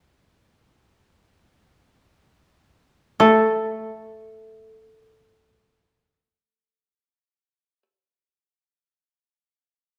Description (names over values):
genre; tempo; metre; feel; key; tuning
japanese traditional, Japanese chamber music; free time; none; none; unclear; A4 = 440 Hz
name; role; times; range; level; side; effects
koto; melody; 0.0-7.8 s; A4; -20 LUFS; equal; none
shamisen; second line; 0.0-7.8 s; A3; -22 LUFS; equal; none
room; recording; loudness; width
moderate recital hall reverb, RT60 1.4 s; none; -19 LUFS; mono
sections
0.0-3.2 A section; 3.2-10.0 B section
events
slowing down 0.0-3.2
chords
none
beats
free time